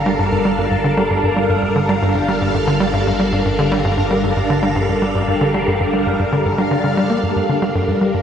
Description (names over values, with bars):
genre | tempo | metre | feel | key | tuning
ambient, sequencer-driven space music | 115 BPM | 4/4 | straight | G minor | A4 = 440 Hz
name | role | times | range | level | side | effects
phased string machine | sustained chords | 0.0-8.2 s | G3 to F5 | -17 LUFS | equal | ensemble chorus, phaser
tight sequencer bass | riff | 0.0-8.2 s | G2 to Bb3 | -18 LUFS | equal | lush chorus, tape echo
analog drone | bass | 0.0-8.2 s | G1 | -27 LUFS | equal | chorus
room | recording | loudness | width
wet lush hall reverb, RT60 2.9 s | dreamy mix soaked in reverb | -15 LUFS | side -8 dB against mid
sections
0.0-8.2 A section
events
none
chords
0.0 Gm7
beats
0.46 | 0.98 1.50 2.02 2.54 | 3.06 3.59 4.11 4.63 | 5.15 5.67 6.19 6.72 | 7.24 7.76